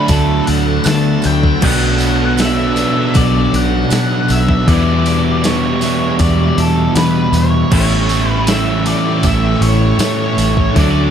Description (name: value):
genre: rock, shoegaze and dream pop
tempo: 79 BPM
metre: 4/4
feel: straight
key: A mixolydian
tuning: A4 = 439 Hz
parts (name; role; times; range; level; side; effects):
- octave-fuzz lead guitar; melody; 0.0-11.1 s; A4 to A5; -20 LUFS; equal; distortion, digital delay
- string machine, violas; sustained chords; 0.0-11.1 s; D4 to C#6; -27 LUFS; equal; ensemble chorus
- twelve-string electric guitar; arpeggios; 0.0-11.1 s; E3 to D4; -25 LUFS; left 2 dB; none
- distorted electric guitar; riff; 0.0-11.1 s; E2 to D4; -22 LUFS; equal; distortion
- overdriven electric guitar; riff; 0.0-11.1 s; A2 to E4; -18 LUFS; right 9 dB; reverse reverb
- thick fuzz guitar; riff; 0.0-11.1 s; E2 to D4; -19 LUFS; left 9 dB; distortion, lush chorus
- vintage muted fingered electric bass; bass; 0.1-11.1 s; A1 to E3; -17 LUFS; equal; none
- crisp 8-bit digital drum machine; drums; 0.1-10.9 s; crash cymbal, hi-hat, kick drum, snare drum; -18 LUFS; equal; overdrive
- tambourine; percussion; 0.1-10.9 s; none; -30 LUFS; right 12 dB; none
room: light reverb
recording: none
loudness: -11 LUFS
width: side -8 dB against mid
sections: 0.0-11.1 A section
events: none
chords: 0.0 D6; 1.6 Bm7; 4.7 Em7; 7.7 A7